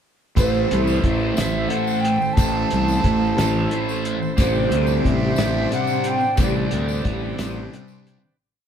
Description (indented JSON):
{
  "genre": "psychedelic rock",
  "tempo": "60 BPM (dotted quarters)",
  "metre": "6/8",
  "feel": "straight",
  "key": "A minor",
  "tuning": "A4 = 440 Hz",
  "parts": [
    { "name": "breathy mellow jazz flute", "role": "melody", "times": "0.4-7.7 s", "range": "C5 to A5", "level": "-25 LUFS", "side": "right 2 dB", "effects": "none" },
    { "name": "overdriven combo organ", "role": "sustained chords", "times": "0.4-8.4 s", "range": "C4 to B5", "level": "-29 LUFS", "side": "right 2 dB", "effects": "none" },
    { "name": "thick fuzz guitar", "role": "riff", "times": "0.4-8.2 s", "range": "A2 to C4", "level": "-24 LUFS", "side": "equal", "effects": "distortion, phaser" },
    { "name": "fuzz fingered electric bass", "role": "bass", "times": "0.4-7.7 s", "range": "A1 to D2", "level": "-23 LUFS", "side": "equal", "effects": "overdrive" },
    { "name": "analog drone", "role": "drone", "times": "1.8-8.5 s", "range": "A1", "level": "-33 LUFS", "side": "equal", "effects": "none" },
    { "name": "cloth-damped thuddy drum kit", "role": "drums", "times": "0.4-8.2 s", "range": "hi-hat, kick drum, snare drum", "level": "-22 LUFS", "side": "equal", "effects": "none" },
    { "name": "tambourine", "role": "percussion", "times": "0.4-8.0 s", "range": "none", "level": "-38 LUFS", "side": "left 4 dB", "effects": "none" }
  ],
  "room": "wet stone room reverb, RT60 1.3 s",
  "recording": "band playing live in one room",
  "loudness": "-18 LUFS",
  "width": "side -8 dB against mid",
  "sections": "0.4-8.4 groove",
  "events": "fade-out 6.4-8.4",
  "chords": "0.4 Amadd9; 4.4 Csus2/A"
}